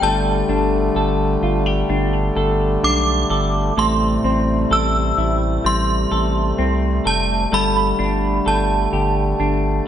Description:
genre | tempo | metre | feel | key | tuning
dream pop | 64 BPM | 4/4 | straight | unclear | A4 = 441 Hz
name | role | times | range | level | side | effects
synth chime | melody | 0.0-9.9 s | A5 to E6 | -21 LUFS | right 1 dB | ensemble chorus, phaser, tape echo
mellow accordion | sustained chords | 0.0-9.9 s | C3 to A3 | -22 LUFS | left 1 dB | none
semi-hollow electric guitar | arpeggios | 0.0-9.9 s | A2 to A4 | -22 LUFS | left 2 dB | wide subtle chorus, tape echo
round analog bass | bass | 0.0-9.8 s | F1 to C2 | -21 LUFS | right 1 dB | none
room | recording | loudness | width
moderate lush hall reverb, RT60 2.0 s, digital ambience | nothing above 10.7 kHz | -16 LUFS | side -10 dB against mid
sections
0.0-9.9 A section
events
none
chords
0.0 Gsus2; 3.8 Am7; 7.5 Gsus2

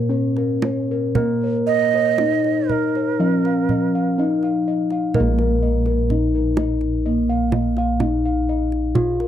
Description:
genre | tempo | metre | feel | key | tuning
Javanese gamelan | 56-63 BPM | 4/4 | straight | unclear | A4 = 442 Hz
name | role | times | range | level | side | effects
gamelan-type bronze metallophone | melody | 0.0-9.3 s | Bb3 to F4 | -21 LUFS | left 1 dB | none
gamelan-type bossed gongs | arpeggios | 0.0-9.3 s | Ab4-25c to F5 | -28 LUFS | left 4 dB | none
gamelan-type bossed gongs | bass | 0.0-9.3 s | Bb1 to Bb4 | -22 LUFS | equal | none
kendang | percussion | 0.4-9.3 s | none | -24 LUFS | right 4 dB | none
low xiao | second line | 1.7-4.5 s | Bb4 to Eb5 | -21 LUFS | right 12 dB | none
room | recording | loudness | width
studio reverb | dry, close 1970s-style studio recording | -17 LUFS | side -10 dB against mid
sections
0.0-5.2 A section; 5.2-9.3 B section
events
none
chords
none

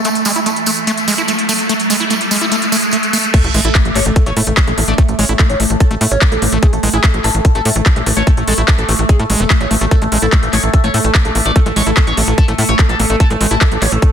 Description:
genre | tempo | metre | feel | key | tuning
psychedelic trance | 146 BPM | 4/4 | straight | A major | A4 = 441 Hz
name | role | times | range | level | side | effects
overtone-sweeping drone | sustained chords | 0.0-14.1 s | A3 | -21 LUFS | right 1 dB | chorus, built-in reverb, phaser, sidechain pumping
tambourine | percussion | 0.0-3.3 s | none | -21 LUFS | right 5 dB | none
riser and sub drop | sound effects | 0.0-5.0 s | none | -21 LUFS | equal | none
overdriven acid bass | riff | 0.1-13.9 s | G#3 to E4 | -20 LUFS | moving between left 4 dB and right 3 dB | distortion, auto-pan, sidechain pumping, tape echo
big-room dance drum kit | drums | 0.1-14.1 s | crash cymbal, handclaps, hi-hat | -18 LUFS | equal | none
overdriven synth lead | melody | 3.3-14.1 s | A3 to D5 | -20 LUFS | left 1 dB | phaser, sidechain pumping, ping-pong delay
electronic kick drum | drums | 3.3-14.1 s | none | -11 LUFS | equal | none
tight sequencer bass | bass | 3.4-14.0 s | E1 to A2 | -16 LUFS | equal | none
room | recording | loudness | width
light reverb, digital ambience | dense, heavily limited modern master | -11 LUFS | side -8 dB against mid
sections
0.0-3.3 A section; 3.3-14.1 B section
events
build-up 0.0-3.3; riser 0.0-3.3; drop 3.3-14.1; impact 3.3-5.0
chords
0.0 A5

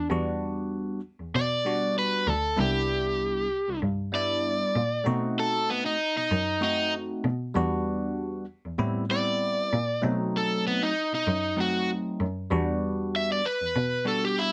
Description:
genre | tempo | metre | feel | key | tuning
straight-eighth soul blues | 97 BPM | 4/4 | straight | E minor | A4 = 441 Hz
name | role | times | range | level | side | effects
crunchy overdriven guitar | melody | 0.0-14.5 s | B3 to E5 | -28 LUFS | equal | none
rich cello | bass | 0.0-14.5 s | C2 to B2 | -33 LUFS | equal | none
bell-like tine electric piano | accompaniment | 0.1-14.5 s | F#3 to F#4 | -32 LUFS | equal | phaser
room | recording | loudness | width
moderate studio ambience, RT60 0.5 s | none | -27 LUFS | mono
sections
0.0-12.5 A section; 12.5-14.5 A section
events
none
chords
0.0 Em9; 2.6 Cmaj7; 5.1 B7b9; 7.5 Em9; 8.8 Am9; 10.0 B7b9; 12.5 Em9

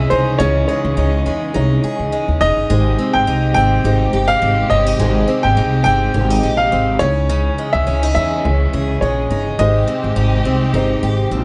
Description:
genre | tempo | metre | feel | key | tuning
acoustic pop | 104 BPM | 4/4 | swing 55% on 16ths | Ab major | A4 = 440 Hz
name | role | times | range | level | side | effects
warm upright piano | melody | 0.0-11.4 s | C5 to G5 | -21 LUFS | equal | none
felt-muted upright piano | accompaniment | 0.0-11.4 s | Ab3 to Db5 | -28 LUFS | equal | none
picked twelve-string acoustic guitar | accompaniment | 0.0-11.4 s | Db3 to Ab4 | -24 LUFS | equal | none
warm studio string section | sustained chords | 0.0-11.4 s | C3 to G4 | -28 LUFS | equal | none
upright bass | bass | 0.0-11.4 s | Fb1 to Fb2 | -20 LUFS | equal | none
room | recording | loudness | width
light reverb | nothing above 10.8 kHz | -16 LUFS | mono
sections
0.0-11.4 A section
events
none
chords
0.0 Dbmadd9; 2.7 Abmaj7; 7.0 Dbmadd9; 9.6 Abmaj7

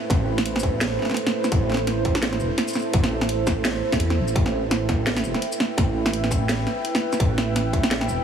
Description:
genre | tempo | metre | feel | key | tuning
half-time drum and bass | 169 BPM | 4/4 | swing 57% on 16ths, half-time | A minor | A4 = 442 Hz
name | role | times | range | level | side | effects
deep dark ambient pad | sustained chords | 0.0-8.2 s | A3 to G5 | -26 LUFS | right 2 dB | chorus, built-in reverb, sidechain pumping
dark detuned saw bass | bass | 0.1-8.2 s | E1 to E2 | -26 LUFS | right 1 dB | none
drum and bass drum kit | drums | 0.1-8.2 s | hi-hat, shaker, snare drum | -25 LUFS | right 1 dB | overdrive, studio reverb
electronic kick drum | drums | 0.1-7.8 s | none | -24 LUFS | equal | distortion, studio reverb
room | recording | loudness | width
light reverb, digital ambience | heavily compressed radio sound, multiband compression | -20 LUFS | side -8 dB against mid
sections
0.0-8.2 A section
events
none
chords
0.0 Am; 4.4 Em

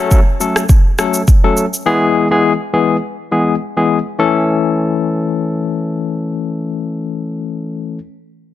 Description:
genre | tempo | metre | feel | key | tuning
afrobeats | 103 BPM | 4/4 | swing 55% on 16ths | A major | A4 = 439 Hz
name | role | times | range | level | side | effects
barky tine electric piano | accompaniment | 0.0-8.0 s | E3 to A4 | -15 LUFS | left 4 dB | medium stereo tremolo
afro-pop drum kit | drums | 0.1-1.9 s | kick drum, rim click, shaker | -11 LUFS | equal | soft clipping on snare
room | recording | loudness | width
light reverb | dense, heavily limited modern master | -13 LUFS | side -13 dB against mid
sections
0.0-4.2 A section; 4.2-6.5 B section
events
none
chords
0.0 F#m; 1.9 E; 4.2 A

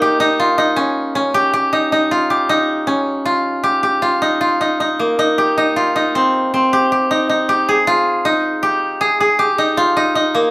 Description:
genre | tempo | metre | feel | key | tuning
contemporary instrumental, contemporary | 157 BPM | 7/4 | straight | unclear | A4 = 441 Hz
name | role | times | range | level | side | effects
koto | solo | 0.0-10.5 s | Bb3 to Ab4 | -16 LUFS | equal | none
room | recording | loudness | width
moderate recital hall reverb, RT60 1.3 s | close, detailed microphones | -16 LUFS | mono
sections
0.0-10.5 A section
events
none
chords
0.0 Eb7; 5.2 Abmaj9

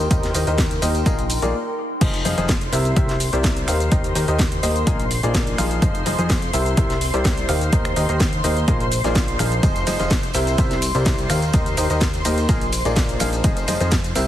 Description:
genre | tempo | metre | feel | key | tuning
piano house | 126 BPM | 4/4 | straight | F dorian | A4 = 438 Hz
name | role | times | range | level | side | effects
analog string pad | sustained chords | 0.0-14.3 s | Bb4 to C6 | -29 LUFS | right 1 dB | ensemble chorus, sidechain pumping
bright grand piano | riff | 0.0-14.3 s | C3 to F5 | -23 LUFS | left 2 dB | sidechain pumping, ping-pong delay
fat analog bass | bass | 0.0-14.3 s | F1 to F2 | -24 LUFS | equal | sidechain pumping
house drum kit | drums | 0.0-14.3 s | crash cymbal, finger snaps, hi-hat, ride cymbal, shaker, snare drum | -26 LUFS | equal | none
tambourine | percussion | 0.0-1.5, 9.6-14.3 s | none | -36 LUFS | right 2 dB | none
warbly tape-like pad | texture | 0.0-1.5 s | Eb4 to C6 | -29 LUFS | equal | chorus, built-in reverb, sidechain pumping
electronic kick drum | drums | 0.1-14.0 s | none | -21 LUFS | equal | none
room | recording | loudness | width
little or no reverb | heavily compressed radio sound, multiband compression, lossy compression artefacts | -17 LUFS | side -12 dB against mid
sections
0.0-2.0 A section; 2.0-14.3 B section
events
stop 1.5-2.0; drop 2.0-14.3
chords
0.0 Eb6; 1.1 Bb7sus4; 2.0 Fm7; 2.7 C7; 3.7 Eb6; 4.9 Bb7sus4; 5.8 Fm7; 6.5 C7; 7.5 Eb6; 8.7 Bb7sus4; 9.6 Fm7; 10.3 C7; 11.3 Eb6; 12.5 Bb7sus4; 13.4 Fm7

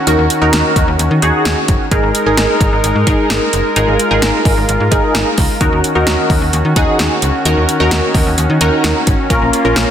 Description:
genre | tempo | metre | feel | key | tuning
synth-pop | 130 BPM | 4/4 | straight | Eb minor | A4 = 439 Hz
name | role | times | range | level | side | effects
brassy analog pad | sustained chords | 0.0-9.9 s | Eb3 to Bb4 | -17 LUFS | equal | chorus
funky polysynth comp | accompaniment | 0.1-9.9 s | Db4 to Bb4 | -15 LUFS | right 1 dB | chorus
slap-like FM bass | bass | 0.1-9.9 s | Gb1 to Eb3 | -16 LUFS | equal | none
deep house drum kit | drums | 0.1-9.9 s | hi-hat, kick drum, snare drum | -16 LUFS | equal | overdrive
room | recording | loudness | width
moderate concert hall reverb, RT60 1.7 s, digital ambience | dense, heavily limited modern master | -11 LUFS | side -9 dB against mid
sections
0.0-9.9 A section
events
none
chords
0.0 Ebm7; 1.9 Absus2; 5.6 Ebm7; 9.3 Bbm

